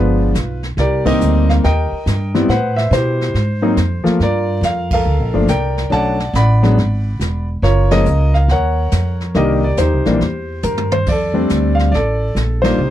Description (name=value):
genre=jazz piano trio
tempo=140 BPM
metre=4/4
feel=swing 66% on 8ths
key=unclear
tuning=A4 = 440 Hz
part: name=warm concert grand piano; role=melody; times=0.0-12.9 s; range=Eb3 to B5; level=-16 LUFS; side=left 1 dB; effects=none
part: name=upright bass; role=bass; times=0.0-12.9 s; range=E1 to B2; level=-16 LUFS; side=equal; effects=none
part: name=jazz brush drum kit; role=drums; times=0.3-12.9 s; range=brushed snare drum, crash cymbal, hi-hat, kick drum, ride cymbal, snare drum, toms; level=-25 LUFS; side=right 1 dB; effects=none
room=little or no reverb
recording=none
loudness=-13 LUFS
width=side -12 dB against mid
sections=0.0-11.1 A section; 11.1-12.9 B section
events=band accent 1.0, 4.8, 7.8, 12.6; drum fill 10.6-11.1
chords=0.0 G7b9; 0.8 Cm9; 2.5 Am9; 3.3 Abadd9; 4.2 Gm9; 5.9 Bm7; 6.8 E9; 7.6 Gbmaj7; 9.3 Cm7; 10.2 C; 11.1 F6